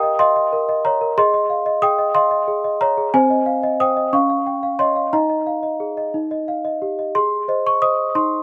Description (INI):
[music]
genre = classical, lullaby for celesta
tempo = 60 BPM (dotted quarters)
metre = 6/8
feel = straight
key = Ab major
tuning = A4 = 442 Hz
[part]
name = worn celesta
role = solo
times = 0.0-8.4 s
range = C4 to Eb6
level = -19 LUFS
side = equal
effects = slapback echo
[sound]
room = little or no reverb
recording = recorded outdoors, with no room sound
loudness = -19 LUFS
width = mono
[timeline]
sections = 0.0-7.2 A section; 7.2-8.4 B section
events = none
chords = 0.0 Eb/G; 1.2 Ab; 3.1 Ab/C; 4.1 Db; 5.1 Ebsus4; 6.1 Eb; 7.2 Ab